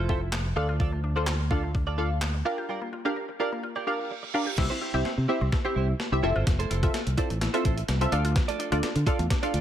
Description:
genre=dance-pop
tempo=127 BPM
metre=4/4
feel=straight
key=C mixolydian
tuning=A4 = 440 Hz
part: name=mallet-like synth pluck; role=arpeggios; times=0.0-9.5 s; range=F3 to C5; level=-37 LUFS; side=left 3 dB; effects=chorus, sidechain pumping, dub echo
part: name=direct-recorded clean electric guitar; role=riff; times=0.0-9.6 s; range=E4 to D5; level=-35 LUFS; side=right 7 dB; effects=analog chorus
part: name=fingered electric bass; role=bass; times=0.0-9.6 s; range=F1 to D3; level=-27 LUFS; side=equal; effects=sidechain pumping
part: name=punchy chord stab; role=accompaniment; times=0.1-9.6 s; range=C4 to F5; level=-30 LUFS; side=equal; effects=chorus, phaser, sidechain pumping
part: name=crisp 8-bit digital drum machine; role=drums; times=0.1-9.6 s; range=crash cymbal, handclaps, hi-hat, kick drum, snare drum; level=-28 LUFS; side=equal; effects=none
part: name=reverse cymbal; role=sound effects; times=3.9-4.6 s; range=none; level=-38 LUFS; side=right 8 dB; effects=none
room=light reverb, digital ambience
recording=none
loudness=-24 LUFS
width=side -10 dB against mid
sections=0.0-4.6 A section; 4.6-9.6 B section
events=break 2.7-4.6; reverse cymbal 3.9-4.6; build-up 4.6-9.6; drum fill 4.6-9.6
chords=0.0 Fmaj7; 0.6 Dm; 2.5 Gm7; 4.6 C; 6.2 Fmaj7; 8.1 Dm

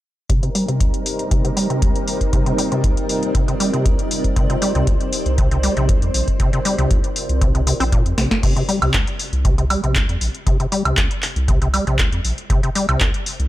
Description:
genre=acid house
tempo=118 BPM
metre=4/4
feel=straight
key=C minor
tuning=A4 = 444 Hz
part: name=string machine, full ensemble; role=sustained chords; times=0.3-8.4 s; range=G3 to C5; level=-25 LUFS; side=equal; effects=ensemble chorus, sidechain pumping
part: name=acid bass, square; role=riff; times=0.3-13.1 s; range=C2 to C4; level=-22 LUFS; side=equal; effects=overdrive, analog chorus, sidechain pumping, tape echo
part: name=booming analog drum machine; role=drums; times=0.3-13.5 s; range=crash cymbal, handclaps, hi-hat, snare drum, woodblock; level=-23 LUFS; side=equal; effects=none
part: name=electronic kick drum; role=drums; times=0.3-13.1 s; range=none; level=-19 LUFS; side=equal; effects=none
part: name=granular cloud pad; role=texture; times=2.1-8.4 s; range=C4 to D5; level=-31 LUFS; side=right 1 dB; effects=built-in reverb, sidechain pumping
part: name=round analog bass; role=bass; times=4.8-13.5 s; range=Bb1 to F2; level=-20 LUFS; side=equal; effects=tube saturation, sidechain pumping
room=digital ambience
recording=none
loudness=-16 LUFS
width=side -15 dB against mid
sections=0.3-8.4 A section; 8.4-13.5 B section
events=fade-in on ambient pad 0.3-8.4; filter sweep on acid bass 0.3-8.4, 8.4-13.5; drum fill 8.2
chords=0.3 Cm7; 8.4 N.C.

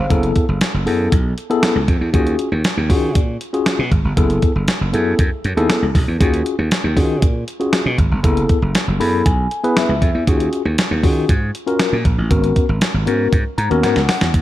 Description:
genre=early-eighties boogie funk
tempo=118 BPM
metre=4/4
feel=straight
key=unclear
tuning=A4 = 441 Hz
part: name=mellow tine electric piano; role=accompaniment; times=0.0-14.3 s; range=B3 to B5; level=-19 LUFS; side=left 2 dB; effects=medium stereo tremolo
part: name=slap bass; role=bass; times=0.0-14.4 s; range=F#1 to D#3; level=-19 LUFS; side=right 1 dB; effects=none
part: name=crisp 8-bit digital drum machine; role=drums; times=0.1-14.4 s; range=hi-hat, kick drum, snare drum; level=-17 LUFS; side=equal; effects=none
room=light reverb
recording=dark, warm production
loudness=-14 LUFS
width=side -14 dB against mid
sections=0.0-14.3 A section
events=tine electric piano fill 8.7-10.3, 13.3-14.3; drum fill 13.8-14.3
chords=0.1 F#m11; 2.1 D#m11; 4.2 F#m11; 6.2 D#m11; 8.2 F#m11; 10.3 D#m11; 12.3 G#m11

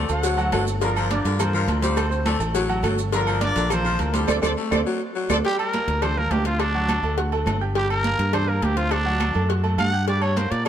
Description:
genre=latin, salsa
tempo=207 BPM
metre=4/4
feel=straight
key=G minor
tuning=A4 = 439 Hz
part: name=mellow trumpet section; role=melody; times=0.0-5.4 s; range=C4 to F#5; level=-27 LUFS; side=equal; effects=none
part: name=raspy baritone saxophone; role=second line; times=0.0-5.3 s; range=D3 to A3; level=-28 LUFS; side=left 5 dB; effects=none
part: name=bright grand piano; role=accompaniment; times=0.0-10.7 s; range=F3 to G6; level=-28 LUFS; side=right 3 dB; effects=none
part: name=fingered electric bass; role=bass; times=0.0-10.7 s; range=G1 to Bb2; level=-24 LUFS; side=equal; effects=none
part: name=agogo bells and timbales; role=percussion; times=0.1-10.7 s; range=none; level=-31 LUFS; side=right 4 dB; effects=none
part: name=congas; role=percussion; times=0.1-10.5 s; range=none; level=-31 LUFS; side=right 2 dB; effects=none
part: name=maracas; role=percussion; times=0.1-5.4 s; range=none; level=-38 LUFS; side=right 6 dB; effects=none
part: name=cowbell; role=percussion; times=0.2-10.7 s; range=none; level=-32 LUFS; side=left 4 dB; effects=none
part: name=claves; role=percussion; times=0.5-10.7 s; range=none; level=-35 LUFS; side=left 7 dB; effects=none
part: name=growling trumpet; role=melody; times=5.5-10.7 s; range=D4 to F#5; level=-25 LUFS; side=right 1 dB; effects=none
room=light reverb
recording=heard from further back in the room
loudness=-20 LUFS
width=side -10 dB against mid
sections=0.0-5.4 A section; 5.4-10.7 B section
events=band accent 4.3-5.4; drum fill 4.7-5.4; trumpet solo 5.4-10.7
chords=0.0 D7; 0.8 Gm7; 2.0 D7; 3.1 Gm7; 4.3 D7; 5.4 Gm; 6.6 D7; 7.8 Gm; 8.9 D7; 10.1 Gm

